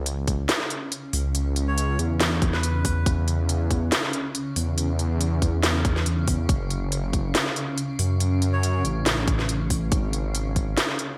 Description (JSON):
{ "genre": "deep dubstep", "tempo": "140 BPM", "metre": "4/4", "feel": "half-time", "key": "C# minor", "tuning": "A4 = 440 Hz", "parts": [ { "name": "granular cloud pad", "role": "sustained chords", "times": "0.5-11.2 s", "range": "C#3 to C#4", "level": "-34 LUFS", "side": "equal", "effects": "built-in reverb, lush chorus" }, { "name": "dark detuned saw bass", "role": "bass", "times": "0.0-10.8 s", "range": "F#1 to F#2", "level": "-26 LUFS", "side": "equal", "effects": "none" }, { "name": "garage drum kit", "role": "drums", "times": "0.1-11.1 s", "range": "hi-hat, snare drum", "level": "-28 LUFS", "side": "equal", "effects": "gated reverb" }, { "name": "electronic kick drum", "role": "drums", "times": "0.3-10.7 s", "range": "none", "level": "-27 LUFS", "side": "equal", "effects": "none" }, { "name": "melodica", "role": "melody", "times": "1.7-3.1, 8.5-8.8 s", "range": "B4 to C#5", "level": "-37 LUFS", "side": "equal", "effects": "dub echo" } ], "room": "light reverb, digital ambience", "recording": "bright 1980s-style digital production, vinyl crackle", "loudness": "-24 LUFS", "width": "mono", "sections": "0.0-11.2 A section", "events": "none", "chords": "0.0 C#m; 6.5 F#m; 9.9 G#sus4" }